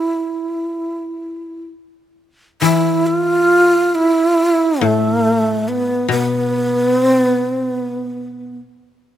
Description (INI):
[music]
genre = japanese traditional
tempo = free time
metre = none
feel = none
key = unclear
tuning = A4 = 440 Hz
[part]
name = breathy mellow long shakuhachi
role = melody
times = 0.0-8.6 s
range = A3 to F4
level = -15 LUFS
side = right 1 dB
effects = none
[part]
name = koto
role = accompaniment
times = 0.0-8.6 s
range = A2 to B4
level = -21 LUFS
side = left 8 dB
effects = none
[sound]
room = light reverb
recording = close, detailed microphones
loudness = -14 LUFS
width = side -11 dB against mid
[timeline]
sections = 0.0-2.6 A section; 2.6-9.2 B section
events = none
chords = none